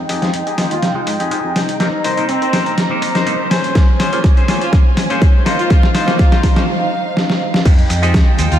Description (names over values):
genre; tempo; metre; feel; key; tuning
filtered disco house; 123 BPM; 4/4; swing 53% on 16ths; F minor; A4 = 441 Hz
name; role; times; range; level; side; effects
dark studio violin section; sustained chords; 0.0-8.6 s; Ab3 to Bb5; -22 LUFS; right 1 dB; sidechain pumping, low-pass filter
fingered electric bass; bass; 0.0-8.6 s; Ab1 to Bb2; -22 LUFS; equal; sidechain pumping, high-pass filter, low-pass filter
clean electric guitar; riff; 0.1-8.5 s; Db4 to Eb5; -22 LUFS; left 4 dB; sidechain pumping, low-pass filter
dusty soul sampler-style drum kit; drums; 0.1-8.6 s; crash cymbal, hi-hat, shaker, snare drum; -18 LUFS; equal; overdrive
clav; accompaniment; 0.2-8.6 s; Ab3 to G5; -24 LUFS; equal; phaser, sidechain pumping, low-pass filter
brilliant horn section; melody; 0.7-8.6 s; C4 to F4; -24 LUFS; right 1 dB; vintage 12-bit sampler grit, sidechain pumping, low-pass filter, ping-pong delay
electronic kick drum; drums; 3.8-8.2 s; none; -11 LUFS; equal; overdrive
room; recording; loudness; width
moderate lush hall reverb, RT60 1.8 s; dreamy mix soaked in reverb; -12 LUFS; side -10 dB against mid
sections
0.0-7.7 A section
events
build-up 0.0-7.7; drum fill 0.0-6.7, 7.2-7.7; filter sweep on horn section 0.0-7.7; filter sweep 0.0-7.7; break 6.7-7.7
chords
0.0 Fm9; 1.8 Cm7; 3.5 Bbm9; 5.5 Dbmaj9; 7.7 Fm9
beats
0.34 0.83 1.31 | 1.80 2.29 2.78 3.27 | 3.75 4.24 4.73 5.22 | 5.71 6.19 6.68 7.17 | 7.66 8.14